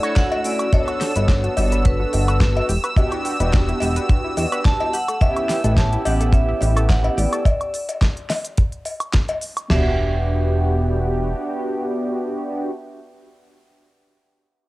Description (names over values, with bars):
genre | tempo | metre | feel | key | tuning
nu-disco, nu disco | 107 BPM | 4/4 | swing 53% on 16ths | E dorian | A4 = 440 Hz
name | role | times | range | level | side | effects
vibraphone with hard mallets | melody | 0.0-13.0 s | B4 to A5 | -27 LUFS | right 1 dB | cassette tape, analog delay
mellow synth brass | accompaniment | 0.0-12.7 s | A3 to A4 | -25 LUFS | equal | chorus, sidechain pumping, tape echo
lush unison pad | sustained chords | 0.0-7.5 s | E6 | -30 LUFS | right 1 dB | chorus, sidechain pumping
electric guitar with an envelope filter | riff | 0.0-0.5 s | D4 to C#5 | -28 LUFS | right 2 dB | wide subtle chorus
pop drum kit | drums | 0.0-9.7 s | cabasa, hi-hat, snare drum, woodblock | -27 LUFS | equal | small room ambience, cassette tape
damped 70s drum kit | drums | 0.2-9.8 s | crash cymbal, kick drum, snare drum, toms | -17 LUFS | equal | small room ambience, cassette tape
cowbell | percussion | 0.3-9.4 s | none | -27 LUFS | left 3 dB | none
analog pluck | arpeggios | 0.7-10.0 s | C#4 to B4 | -32 LUFS | left 1 dB | chorus, sidechain pumping, analog delay
chorused synth bass | bass | 1.2-11.3 s | E1 to E2 | -20 LUFS | equal | none
room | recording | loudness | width
light reverb, small room ambience | home recording on cassette | -17 LUFS | side -19 dB against mid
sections
0.0-9.7 A section; 9.7-11.9 B section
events
drop 0.0-9.7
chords
0.0 Dmaj7; 0.7 Gmaj7; 2.7 Em7; 4.9 A7; 7.5 N.C.; 9.7 Em7